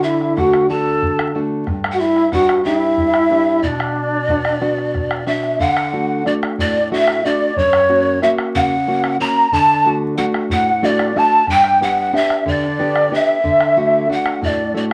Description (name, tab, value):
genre	andean folk, Andean ensemble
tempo	61 BPM (dotted quarters)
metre	6/8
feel	straight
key	unclear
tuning	A4 = 440 Hz
part	breathy mellow pan flute	melody	0.0-14.8 s	C#5 to A#5	-22 LUFS	equal	none
part	breathy mellow large quena	second line	0.0-14.8 s	D4 to A#5	-19 LUFS	equal	none
part	nylon-string guitar	accompaniment	0.0-14.9 s	F#2 to G4	-23 LUFS	equal	none
part	bombo	percussion	0.2-14.6 s	none	-27 LUFS	equal	none
room	wet club reverb, RT60 0.5 s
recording	vinyl crackle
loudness	-16 LUFS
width	mono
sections	0.0-5.6 A section; 5.6-14.9 B section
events	none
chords	0.0 D; 1.7 G; 3.6 Bm; 5.6 D; 7.6 F#; 9.5 D; 11.5 G; 13.4 D